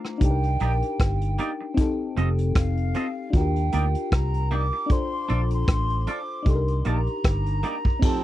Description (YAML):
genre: lovers rock reggae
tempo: 77 BPM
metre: 4/4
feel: swing 56% on 16ths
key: C dorian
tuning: A4 = 442 Hz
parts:
  - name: mellow FM electric piano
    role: accompaniment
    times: 0.0-8.2 s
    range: A3 to C5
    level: -29 LUFS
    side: left 4 dB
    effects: chorus, phaser
  - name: vintage brush drum kit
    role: drums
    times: 0.0-8.2 s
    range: crash cymbal, hi-hat, kick drum, rim click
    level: -22 LUFS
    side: equal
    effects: none
  - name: breathy mellow silver concert flute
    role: melody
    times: 0.2-8.2 s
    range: F5 to D6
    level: -32 LUFS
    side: right 2 dB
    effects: tape echo
  - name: vintage muted fingered electric bass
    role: bass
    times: 0.2-7.6 s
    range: F1 to Eb2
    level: -24 LUFS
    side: equal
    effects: none
  - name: twangy electric guitar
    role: stabs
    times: 0.6-7.9 s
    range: Bb3 to Eb5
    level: -29 LUFS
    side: right 3 dB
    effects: wide subtle chorus
  - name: mellow horn section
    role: second line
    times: 8.0-8.2 s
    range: A2 to C4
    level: -29 LUFS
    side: right 9 dB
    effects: none
room: little or no reverb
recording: dry, close 1970s-style studio recording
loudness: -22 LUFS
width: side -14 dB against mid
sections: 0.0-8.0 A section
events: none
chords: 0.2 Cm9; 1.8 F7; 3.3 Ebmaj7; 4.9 Bbmaj7; 6.5 Cm9